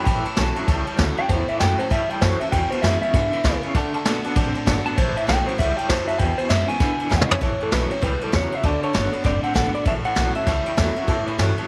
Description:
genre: rockabilly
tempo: 196 BPM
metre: 4/4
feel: swing 62% on 8ths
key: A mixolydian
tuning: A4 = 440 Hz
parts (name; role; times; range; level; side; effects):
- electric guitar through a small old amp; melody; 0.0-11.2 s; A4 to B5; -27 LUFS; equal; tape echo
- picked steel-string acoustic guitar; accompaniment; 0.0-11.7 s; E2 to F#4; -33 LUFS; equal; none
- electric guitar through a small old amp; riff; 0.0-11.7 s; E2 to C4; -30 LUFS; equal; tremolo
- warm upright piano; accompaniment; 0.1-11.7 s; B4 to B5; -36 LUFS; equal; none
- upright bass; bass; 0.1-11.6 s; F#1 to A2; -28 LUFS; equal; none
- vintage brush drum kit; drums; 0.1-11.6 s; kick drum, ride cymbal, snare drum, toms; -26 LUFS; equal; none
room: small room reverb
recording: none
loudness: -21 LUFS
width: mono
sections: 0.0-7.4 A section; 7.4-11.7 B section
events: clean electric guitar solo 0.0-7.4; drum fill 7.1-7.4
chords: 0.0 A; 2.5 E; 3.7 D; 5.0 A; 6.2 E; 7.4 A; 8.6 D; 9.9 A

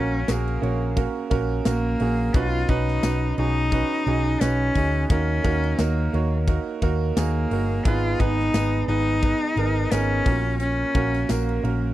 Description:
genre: piano-driven pop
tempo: 87 BPM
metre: 4/4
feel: swing 56% on 16ths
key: unclear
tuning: A4 = 440 Hz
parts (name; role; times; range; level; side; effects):
- clear cello; melody; 0.0-11.9 s; Bb3 to F4; -26 LUFS; left 2 dB; none
- bright concert grand piano; accompaniment; 0.0-11.9 s; Ab2 to Db5; -27 LUFS; right 7 dB; none
- hollow-body short-scale picked electric bass; bass; 0.0-11.9 s; G1 to Eb2; -24 LUFS; left 1 dB; none
- modern studio drum kit; drums; 0.3-11.8 s; handclaps, hi-hat, kick drum, ride cymbal, snare drum; -24 LUFS; left 1 dB; none
- tambourine; percussion; 0.3-11.5 s; none; -42 LUFS; left 27 dB; none
room: little or no reverb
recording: dry, close 1970s-style studio recording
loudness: -20 LUFS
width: side -14 dB against mid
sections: 0.0-11.9 A section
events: none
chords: 0.0 Gb/Bb; 2.3 Badd9; 5.1 Ebm; 7.9 Abm; 10.3 Gb/Bb

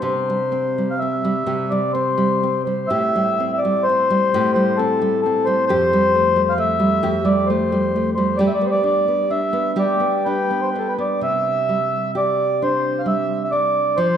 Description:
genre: celtic folk, Celtic slow air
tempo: 65 BPM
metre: 3/4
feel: uneven beats, rubato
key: C major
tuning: A4 = 440 Hz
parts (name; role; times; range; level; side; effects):
- mellow accordion; melody; 0.0-14.2 s; G4 to G5; -18 LUFS; left 1 dB; none
- nylon-string guitar; accompaniment; 0.0-14.2 s; F2 to G4; -21 LUFS; right 1 dB; none
room: moderate concert hall reverb, RT60 1.9 s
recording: recorded in a church or concert hall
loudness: -17 LUFS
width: side -8 dB against mid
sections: 0.1-11.2 A section; 11.2-14.2 B section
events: none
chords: 0.1 C5; 2.9 Am7; 5.7 Fadd9; 8.4 G; 11.2 Cadd9

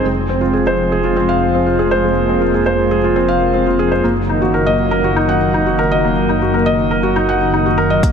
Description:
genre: piano and strings electronica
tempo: 120 BPM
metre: 4/4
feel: straight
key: unclear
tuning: A4 = 441 Hz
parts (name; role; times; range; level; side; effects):
- lush unison pad; sustained chords; 0.0-8.1 s; Db3 to C5; -19 LUFS; right 2 dB; chorus, sidechain pumping
- felt-muted upright piano; riff; 0.0-8.1 s; Ab3 to Gb5; -14 LUFS; left 1 dB; low-pass filter, ping-pong delay
- dark detuned saw bass; bass; 0.0-8.1 s; F1 to Gb1; -21 LUFS; equal; sidechain pumping
- electronic hi-hat; drums; 8.0-8.1 s; none; -30 LUFS; left 4 dB; overdrive, low-pass filter on hats, low-pass filter on room
- electronic kick drum; drums; 8.0-8.1 s; none; -13 LUFS; equal; overdrive
room: moderate huge ambient reverb, RT60 4.9 s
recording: none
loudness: -12 LUFS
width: side -7 dB against mid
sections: 0.0-8.0 A section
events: none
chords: 0.0 Fm; 4.0 Ebm/Gb

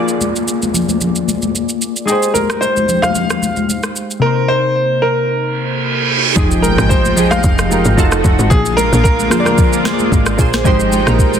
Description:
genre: amapiano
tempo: 112 BPM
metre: 4/4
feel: swing 55% on 16ths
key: F dorian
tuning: A4 = 440 Hz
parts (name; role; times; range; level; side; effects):
- glassy digital keys; accompaniment; 0.0-11.4 s; C3 to D5; -18 LUFS; equal; chorus
- downlifter, reverse cymbal and impact; sound effects; 0.0-2.1, 5.5-8.5 s; none; -21 LUFS; right 2 dB; none
- smooth R&B drum kit; drums; 0.1-11.4 s; kick drum, rim click, shaker, snare drum; -16 LUFS; equal; soft clipping on snare
- congas; percussion; 0.2-11.4 s; none; -20 LUFS; left 3 dB; none
- clear grand piano; melody; 2.1-10.2 s; Ab4 to F5; -17 LUFS; equal; digital delay
- lush unison pad; sustained chords; 6.4-11.4 s; D3 to G5; -20 LUFS; equal; chorus, sidechain pumping
- tight log drum bass; bass; 6.4-11.4 s; F1 to Bb1; -16 LUFS; equal; none
room: light reverb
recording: dense, heavily limited modern master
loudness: -12 LUFS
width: side -8 dB against mid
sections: 0.0-6.4 A section; 6.4-11.4 B section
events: reverse cymbal 5.5-6.4; drop 6.4-11.4; impact 6.4-8.5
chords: 0.0 Bb7; 2.1 Fm9/Ab; 4.2 Cm7; 6.4 Fm9; 8.0 F7b9; 8.5 Bb7; 10.7 Fm9/Ab

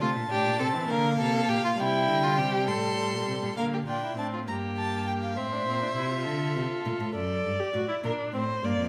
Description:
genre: classical, baroque-style fugue for string quartet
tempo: 67 BPM (dotted quarters)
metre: 6/8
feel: straight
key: Bb major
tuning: A4 = 440 Hz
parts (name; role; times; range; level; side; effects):
- warm violin; melody; 0.0-7.2 s; E5 to C6; -34 LUFS; equal; none
- warm violin; second line; 0.0-8.9 s; D4 to D5; -33 LUFS; equal; none
- dark viola; accompaniment; 0.0-8.9 s; G3 to A4; -34 LUFS; equal; none
- warm cello; bass; 0.0-8.9 s; F2 to E3; -35 LUFS; equal; none
room: moderate recital hall reverb, RT60 1.4 s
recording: none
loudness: -28 LUFS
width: mono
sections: 0.0-3.6 A section; 3.6-8.9 B section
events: none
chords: 0.0 F (rootless); 0.9 Bb; 1.8 C; 2.7 Am7; 3.6 Bb; 4.5 Gmadd9; 5.4 Am; 7.2 D/F#; 8.0 Gm (rootless)

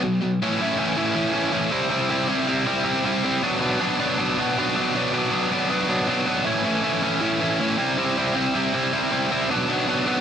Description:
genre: punk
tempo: 158 BPM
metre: 4/4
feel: straight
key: unclear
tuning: A4 = 441 Hz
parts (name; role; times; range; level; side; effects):
- distorted electric guitar; solo; 0.0-10.2 s; A2 to E4; -20 LUFS; equal; overdrive, digital delay
room: light reverb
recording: dense, heavily limited modern master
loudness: -20 LUFS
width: side -8 dB against mid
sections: 0.4-10.2 A section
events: none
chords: 0.4 A; 1.7 C; 3.4 Bm; 6.5 A; 7.8 C; 9.5 Bm

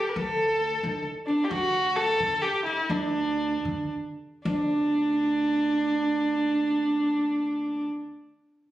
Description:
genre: persian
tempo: 71-89 BPM (dotted quarters)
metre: 6/8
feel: straight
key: D dastgah chahargah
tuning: A4 = 443 Hz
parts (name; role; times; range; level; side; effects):
- rich kamancheh; melody; 0.0-7.9 s; D4 to Bb4+43c; -24 LUFS; right 1 dB; plate reverb
- oud; second line; 0.0-7.9 s; D4 to Bb4+45c; -34 LUFS; right 2 dB; none
- upright bass; bass; 0.2-7.9 s; D2 to D3; -36 LUFS; left 2 dB; none
room: moderate studio reverb, RT60 0.7 s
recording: recorded on a phone in the room, studio reverb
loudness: -24 LUFS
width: side -14 dB against mid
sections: 0.0-4.4 A section; 4.4-7.8 B section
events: slowing down 1.5-4.4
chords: none

